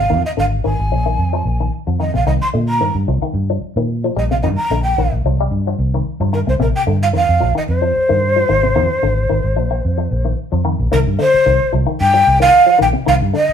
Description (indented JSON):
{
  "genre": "afrobeat",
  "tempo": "111 BPM",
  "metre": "4/4",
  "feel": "straight",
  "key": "C minor",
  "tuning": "A4 = 440 Hz",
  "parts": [
    { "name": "breathy mellow shakuhachi", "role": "melody", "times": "0.0-13.5 s", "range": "Bb4 to C6", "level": "-15 LUFS", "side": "equal", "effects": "none" },
    { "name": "electric guitar with an envelope filter", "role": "arpeggios", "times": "0.0-13.5 s", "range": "C3 to G3", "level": "-21 LUFS", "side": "left 5 dB", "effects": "phaser" },
    { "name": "vintage muted fingered electric bass", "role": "bass", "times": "0.0-13.5 s", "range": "Ab1 to Bb2", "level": "-17 LUFS", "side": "equal", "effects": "none" }
  ],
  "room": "moderate studio reverb, RT60 0.7 s",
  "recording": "band playing live in one room",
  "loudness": "-13 LUFS",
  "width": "side -8 dB against mid",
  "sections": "0.0-10.9 A section; 10.9-13.5 B section",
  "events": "none",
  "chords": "0.0 Bb7sus4; 2.3 Cm7; 6.6 Bb9sus4; 10.9 Cm",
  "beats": "| 0.11 0.65 1.19 1.73 | 2.27 2.82 3.36 3.90 | 4.44 4.98 5.52 6.06 | 6.60 7.14 7.68 8.22 | 8.76 9.30 9.84 10.38 | 10.92 11.46 12.00 12.54 | 13.08"
}